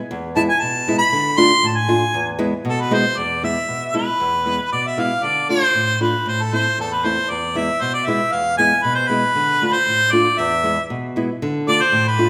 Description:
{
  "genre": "klezmer",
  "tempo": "117 BPM",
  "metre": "2/4",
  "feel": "straight",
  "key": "E phrygian dominant",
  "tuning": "A4 = 440 Hz",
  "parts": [
    { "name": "nylon-string guitar", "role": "accompaniment", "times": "0.1-12.3 s", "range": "E2 to F4", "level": "-23 LUFS", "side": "equal", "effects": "none" },
    { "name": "mellow harmonica", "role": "melody", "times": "0.4-12.3 s", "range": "A4 to C6", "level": "-20 LUFS", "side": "equal", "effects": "none" }
  ],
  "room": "wet recital hall reverb, RT60 1.6 s",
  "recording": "none",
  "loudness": "-18 LUFS",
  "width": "mono",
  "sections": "0.0-3.2 A section; 3.2-11.4 B section",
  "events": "harmonica solo 0.0-3.2",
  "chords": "0.0 E; 1.1 Dm; 2.1 E; 5.2 Dm; 6.3 Am; 7.3 E; 9.4 Dm; 10.4 E; 11.4 Dm"
}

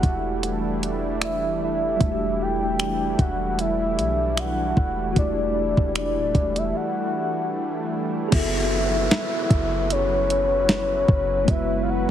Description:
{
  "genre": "contemporary R&B",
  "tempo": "76 BPM",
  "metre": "4/4",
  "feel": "swing 54% on 16ths",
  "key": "F# phrygian",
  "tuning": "A4 = 440 Hz",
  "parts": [
    { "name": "soft octave-layered synth lead", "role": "melody", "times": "0.0-12.1 s", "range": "C#5 to G5", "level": "-25 LUFS", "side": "left 1 dB", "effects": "chorus, tremolo, ping-pong delay" },
    { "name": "mellow tine electric piano", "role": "accompaniment", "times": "0.0-12.1 s", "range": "G3 to B4", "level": "-29 LUFS", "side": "equal", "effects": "medium stereo tremolo" },
    { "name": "warm analog pad", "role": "sustained chords", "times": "0.0-12.1 s", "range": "E3 to B4", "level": "-29 LUFS", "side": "right 1 dB", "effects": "chorus" },
    { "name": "warm 808-style bass", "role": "bass", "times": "0.0-12.1 s", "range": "D1 to B1", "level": "-28 LUFS", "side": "equal", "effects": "none" },
    { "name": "clean 12-bit digital drum machine", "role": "drums", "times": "0.0-11.7 s", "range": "crash cymbal, finger snaps, hi-hat, kick drum, snare drum", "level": "-22 LUFS", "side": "equal", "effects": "vintage 12-bit sampler grit" },
    { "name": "downlifter", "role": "sound effects", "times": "8.3-12.1 s", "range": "none", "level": "-32 LUFS", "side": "equal", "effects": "none" }
  ],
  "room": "light reverb",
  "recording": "heavily compressed radio sound, multiband compression",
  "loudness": "-20 LUFS",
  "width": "side -10 dB against mid",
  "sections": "0.0-8.3 A section; 8.3-12.1 B section",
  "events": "break 6.7-8.3",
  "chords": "0.0 Em11; 8.3 F#m11"
}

